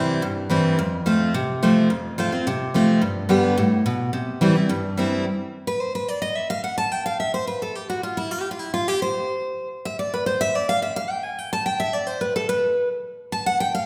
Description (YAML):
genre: bluegrass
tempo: 215 BPM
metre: 4/4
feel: straight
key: C major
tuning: A4 = 436 Hz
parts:
  - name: picked steel-string acoustic guitar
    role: solo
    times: 0.0-13.9 s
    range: F2 to A5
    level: -23 LUFS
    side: equal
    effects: none
room: wet recital hall reverb, RT60 1.5 s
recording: recorded in a church or concert hall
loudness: -23 LUFS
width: mono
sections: 0.0-5.2 A section; 5.2-13.9 B section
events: steel-string acoustic guitar solo 5.2-13.9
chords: 0.0 C; 0.8 F; 3.0 G; 4.1 C; 5.2 N.C.